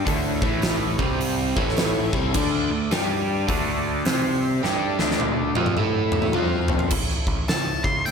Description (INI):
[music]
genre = blues rock power trio and southern rock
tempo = 105 BPM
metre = 4/4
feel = swing 62% on 8ths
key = unclear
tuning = A4 = 439 Hz
[part]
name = overdriven tonewheel organ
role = sustained chords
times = 0.0-8.1 s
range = G3 to F5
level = -32 LUFS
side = right 2 dB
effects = chorus vibrato, slow rotary speaker
[part]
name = overdriven electric guitar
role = riff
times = 0.0-6.9 s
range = A2 to C5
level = -24 LUFS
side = left 1 dB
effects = phaser
[part]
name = growling picked electric bass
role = bass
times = 0.0-8.1 s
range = A1 to C3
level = -28 LUFS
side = equal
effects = overdrive
[part]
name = huge arena drum kit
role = drums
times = 0.1-8.1 s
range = crash cymbal, hi-hat, kick drum, snare drum, toms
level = -24 LUFS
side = equal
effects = none
[part]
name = octave-fuzz lead guitar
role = melody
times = 7.5-8.1 s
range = G5 to C6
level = -24 LUFS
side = left 2 dB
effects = distortion
[sound]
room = moderate lush hall reverb, RT60 1.7 s, small room ambience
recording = big arena sound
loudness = -20 LUFS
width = side -6 dB against mid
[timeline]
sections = 0.0-6.9 A section; 6.9-8.1 B section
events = drum fill 4.6-6.9; lead electric guitar solo 6.9-8.1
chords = 0.1 A; 0.9 C5; 1.5 A; 2.3 D5; 2.9 G5; 3.5 D5; 4.1 C5; 4.6 D5; 5.8 A5; 6.3 F5; 6.9 A